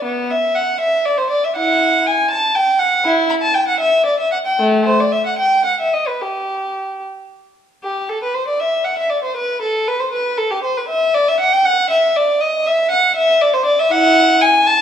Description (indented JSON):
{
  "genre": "classical, baroque-style suite movement for unaccompanied violin",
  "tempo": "72-81 BPM (dotted quarters)",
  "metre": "6/8",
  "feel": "rubato",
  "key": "E minor",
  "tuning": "A4 = 437 Hz",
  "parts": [
    { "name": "dark violin", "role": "solo", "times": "0.0-14.8 s", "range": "A3 to B5", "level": "-14 LUFS", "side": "equal", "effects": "none" }
  ],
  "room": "moderate recital hall reverb, RT60 1.4 s",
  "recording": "minimal, uncompressed stereo recording",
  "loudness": "-14 LUFS",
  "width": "side -9 dB against mid",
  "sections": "0.0-7.8 A section; 7.8-14.8 A section",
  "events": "none",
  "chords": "none"
}